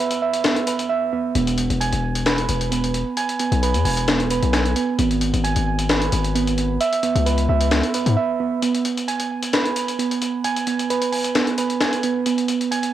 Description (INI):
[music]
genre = hip hop, trap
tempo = 132 BPM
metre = 4/4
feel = half-time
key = unclear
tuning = A4 = 441 Hz
[part]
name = soft electric-piano-like synth keys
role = arpeggios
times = 0.0-12.9 s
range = B3 to G#5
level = -21 LUFS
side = right 5 dB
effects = chorus, low-pass filter, tape echo
[part]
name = breakbeat sampler-style drum kit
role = drums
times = 0.1-12.9 s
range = finger snaps, hi-hat, snare drum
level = -24 LUFS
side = left 2 dB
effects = cassette tape
[part]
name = distorted 808-style bass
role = bass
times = 1.4-8.2 s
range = E1 to G#2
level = -21 LUFS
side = left 2 dB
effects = distortion
[sound]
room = light reverb, digital ambience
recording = home recording on cassette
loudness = -18 LUFS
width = side -12 dB against mid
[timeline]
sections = 0.0-12.9 A section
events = break 0.0-1.4, 8.2-8.6, 8.6-12.9; drums muted 0.9-1.4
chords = 0.0 Bsus4; 1.4 E; 5.0 G#m; 6.8 C#m7; 8.6 G#m/B